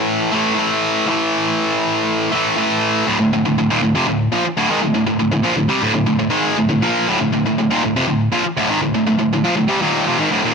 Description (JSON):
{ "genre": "metal", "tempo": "120 BPM", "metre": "4/4", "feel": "straight", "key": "D minor", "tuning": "A4 = 438 Hz", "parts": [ { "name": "tight distorted guitar", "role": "solo", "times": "0.0-10.5 s", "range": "D2 to Bb3", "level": "-15 LUFS", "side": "equal", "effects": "distortion, ping-pong delay" } ], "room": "light reverb", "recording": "rough home demo mix", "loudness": "-15 LUFS", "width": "side -5 dB against mid", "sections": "0.0-3.1 A section; 3.1-10.5 B section", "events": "none", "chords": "0.0 A5; 3.1 Dm", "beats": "0.07 0.57 | 1.07 1.57 2.07 2.57 | 3.08 3.58 4.08 4.58 | 5.08 5.58 6.08 6.58 | 7.08 7.58 8.08 8.57 | 9.07 9.57 10.07" }